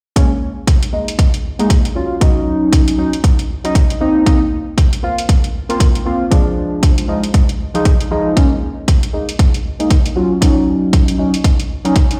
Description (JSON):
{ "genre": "deep house", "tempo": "117 BPM", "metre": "4/4", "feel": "swing 59% on 16ths", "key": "Bb minor", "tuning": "A4 = 440 Hz", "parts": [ { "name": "chorused polysynth", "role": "stabs", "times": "0.2-11.9 s", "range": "F3 to F4", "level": "-19 LUFS", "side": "equal", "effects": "tape echo" }, { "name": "electronic hi-hat", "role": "drums", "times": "0.2-12.2 s", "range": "none", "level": "-28 LUFS", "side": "equal", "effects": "overdrive" }, { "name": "electronic kick drum", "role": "drums", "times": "0.2-12.1 s", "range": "none", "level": "-15 LUFS", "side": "equal", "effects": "overdrive" } ], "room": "light reverb", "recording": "played on a big sound system in a bare room, stone room reverb", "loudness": "-14 LUFS", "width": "mono", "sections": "0.2-12.2 A section", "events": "none", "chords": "0.2 Bbm7; 2.0 Ebm7; 4.0 Cm7; 6.3 Fm7; 8.4 Bbm7; 10.2 Ebm7" }